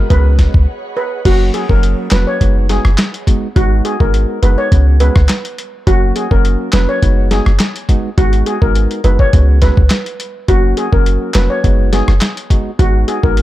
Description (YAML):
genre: dancehall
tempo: 104 BPM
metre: 4/4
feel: straight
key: F# major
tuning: A4 = 440 Hz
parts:
  - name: percussive organ stab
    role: accompaniment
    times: 0.0-13.4 s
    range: F#3 to F#4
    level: -21 LUFS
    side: right 3 dB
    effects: chorus
  - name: ethereal airy pad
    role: sustained chords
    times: 0.0-1.2 s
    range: G#4 to B5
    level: -32 LUFS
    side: equal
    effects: ensemble chorus, built-in reverb, sidechain pumping
  - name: steel pan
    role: melody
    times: 0.1-13.3 s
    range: F#4 to C#5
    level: -18 LUFS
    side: left 1 dB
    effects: analog delay
  - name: clean 808-style bass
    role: bass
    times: 0.1-13.4 s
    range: E#1 to C#2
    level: -12 LUFS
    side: equal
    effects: none
  - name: lo-fi sampler-style drum kit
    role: drums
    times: 0.1-13.4 s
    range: crash cymbal, handclaps, hi-hat, kick drum, rim click, snare drum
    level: -14 LUFS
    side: equal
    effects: overdrive
room: digital ambience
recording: echo-heavy mix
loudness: -10 LUFS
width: side -15 dB against mid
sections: 0.0-1.3 A section; 1.3-13.4 B section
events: break 0.7-1.3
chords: 0.1 C#7sus4; 1.3 F#; 2.4 B6/F#; 4.7 C#7sus4; 5.9 F#; 7.0 B6/F#; 9.3 C#7sus4; 10.5 F#; 11.6 B6/F#